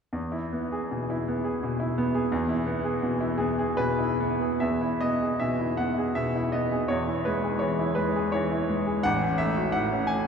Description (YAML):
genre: classical, romantic character piece for solo piano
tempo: 67-87 BPM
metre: 3/4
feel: rubato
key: E major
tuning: A4 = 439 Hz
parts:
  - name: bright grand piano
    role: solo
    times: 0.1-10.3 s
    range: A1 to G#5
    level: -24 LUFS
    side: equal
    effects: none
room: wet cathedral reverb, RT60 6.6 s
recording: recorded in a church or concert hall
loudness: -24 LUFS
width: side -6 dB against mid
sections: 0.1-4.6 A section; 4.6-10.3 B section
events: none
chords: 0.1 E; 6.9 C#m/E; 9.0 F#m/A